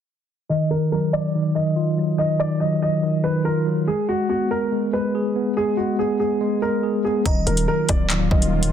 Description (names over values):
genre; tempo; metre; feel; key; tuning
hip hop, drill; 142 BPM; 4/4; half-time; Eb harmonic minor; A4 = 441 Hz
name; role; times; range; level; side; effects
dark concert grand piano; melody; 0.5-8.7 s; Gb4 to Eb5; -24 LUFS; right 2 dB; low-pass filter, tape echo
mellow tine electric piano; accompaniment; 0.5-8.7 s; Eb3 to Ab4; -21 LUFS; left 1 dB; medium stereo tremolo, low-pass filter
delicate synth tine bell; second line; 7.3-7.7 s; Bb5; -38 LUFS; right 5 dB; chorus, tape echo
sweeping resonant pad; sustained chords; 7.3-8.7 s; Eb3 to F4; -30 LUFS; right 1 dB; chorus
growling 808-style bass; bass; 7.3-8.7 s; D1 to Eb1; -23 LUFS; equal; none
drill drum kit; drums; 7.3-8.7 s; handclaps, hi-hat, kick drum; -20 LUFS; equal; none
room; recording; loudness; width
light reverb, digital ambience; dense, heavily limited modern master; -19 LUFS; side -9 dB against mid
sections
0.5-7.3 A section; 7.3-8.7 B section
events
filter sweep 0.5-7.3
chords
0.5 Ebmadd9; 3.9 Abm; 7.3 Ebmadd9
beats
| 0.49 0.92 1.34 1.76 | 2.19 2.61 3.03 3.45 | 3.88 4.30 4.72 5.14 | 5.57 5.99 6.41 6.83 | 7.25 7.68 8.10 8.52